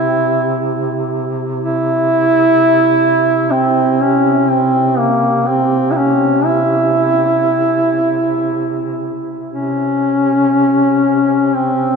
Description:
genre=caucasian folk, Caucasian lament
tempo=free time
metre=none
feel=none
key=unclear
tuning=A4 = 440 Hz
part: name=mellow duduk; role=melody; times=0.0-12.0 s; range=Bb3 to E4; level=-13 LUFS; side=equal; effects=none
part: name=warm duduk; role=drone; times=0.0-12.0 s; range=C3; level=-21 LUFS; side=right 2 dB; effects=stereo widening
room=wet cathedral reverb, RT60 5.9 s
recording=in a vast, echoing space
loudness=-12 LUFS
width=side -5 dB against mid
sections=0.0-12.0 A section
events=none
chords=none

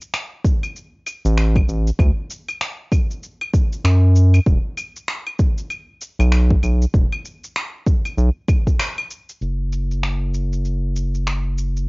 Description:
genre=organic downtempo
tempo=97 BPM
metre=4/4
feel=swing 60% on 16ths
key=unclear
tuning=A4 = 439 Hz
part: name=electronic shaker, finger snaps and claves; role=drums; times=0.0-11.9 s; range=none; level=-26 LUFS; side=equal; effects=overdrive, low-pass filter on perc, low-pass filter on snare
part: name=electronic kick drum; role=drums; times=0.4-8.8 s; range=none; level=-16 LUFS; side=equal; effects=overdrive
part: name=round analog bass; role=bass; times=1.2-11.9 s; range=E1 to F#2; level=-16 LUFS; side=equal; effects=sidechain pumping
room=little or no reverb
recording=home recording on cassette, nothing above 7.5 kHz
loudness=-17 LUFS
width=side -31 dB against mid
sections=0.0-9.4 A section; 9.4-11.9 B section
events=band accent 8.8-9.1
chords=none

